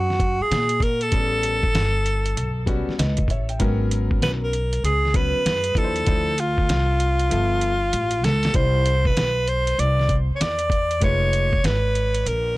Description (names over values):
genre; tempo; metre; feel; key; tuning
hip hop, jazz-hop; 97 BPM; 4/4; swing 65% on 16ths; unclear; A4 = 441 Hz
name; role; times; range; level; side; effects
breathy alto saxophone; melody; 0.0-12.6 s; F4 to D5; -22 LUFS; equal; tape echo
upright bass; bass; 0.0-12.6 s; F1 to Bb2; -23 LUFS; equal; none
lo-fi sampler-style drum kit; drums; 0.1-12.4 s; hi-hat, kick drum, snare drum; -24 LUFS; equal; none
clear grand piano; accompaniment; 1.1-11.5 s; F3 to G5; -29 LUFS; left 3 dB; none
room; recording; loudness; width
little or no reverb; dry, gritty hardware recording, transformer saturation; -19 LUFS; side -19 dB against mid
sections
0.0-12.6 A section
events
drum fill 7.3-8.5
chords
0.0 Ebm (rootless); 1.1 A9; 3.6 Abm11; 6.1 Dm9; 7.3 G13; 8.5 Cmaj7; 11.0 Fm7b5